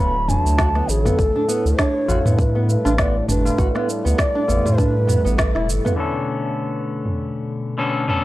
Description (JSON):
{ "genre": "organic downtempo", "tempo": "100 BPM", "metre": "4/4", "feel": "swing 57% on 16ths", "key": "B minor", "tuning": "A4 = 437 Hz", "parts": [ { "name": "mellow hollow bansuri", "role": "melody", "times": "0.0-5.7 s", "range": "A4 to B5", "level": "-24 LUFS", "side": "equal", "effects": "analog delay" }, { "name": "warm analog pad", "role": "sustained chords", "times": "0.0-8.2 s", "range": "A2 to C#5", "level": "-27 LUFS", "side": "equal", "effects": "chorus, sidechain pumping" }, { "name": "flamenco guitar", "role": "arpeggios", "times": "0.0-5.9 s", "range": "B3 to F#4", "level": "-25 LUFS", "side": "right 2 dB", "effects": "analog delay" }, { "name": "warm sub bass", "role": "bass", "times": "0.0-5.8 s", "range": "D1 to A2", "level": "-20 LUFS", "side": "equal", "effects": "tube saturation, sidechain pumping" }, { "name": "organic electronic drum kit", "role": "drums", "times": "0.3-8.2 s", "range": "shaker, snare drum, toms", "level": "-25 LUFS", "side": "equal", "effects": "low-pass filter on snare, low-pass filter on perc, low-pass filter on toms" }, { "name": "tabla", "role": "percussion", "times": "0.3-6.0 s", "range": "none", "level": "-29 LUFS", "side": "left 2 dB", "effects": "none" }, { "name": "electronic kick drum", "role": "drums", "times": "0.6-5.5 s", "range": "none", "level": "-21 LUFS", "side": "equal", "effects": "none" }, { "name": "clean electric guitar", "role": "accompaniment", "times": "6.0-8.2 s", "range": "D3 to A4", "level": "-23 LUFS", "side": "left 3 dB", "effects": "sidechain pumping, low-pass filter, analog delay" } ], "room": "digital ambience", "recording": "dry, gritty hardware recording, transformer saturation", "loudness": "-17 LUFS", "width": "side -16 dB against mid", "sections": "0.0-6.0 A section; 6.0-8.2 B section", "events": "band accent 5.4; filter sweep on clean electric guitar 6.0-8.2", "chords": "0.0 Dmaj7; 1.2 A9sus4; 6.0 Bm9", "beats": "0.58 | 1.18 1.78 2.38 2.98 | 3.58 4.18 4.78 5.38 | 5.98 6.58 7.18 7.78" }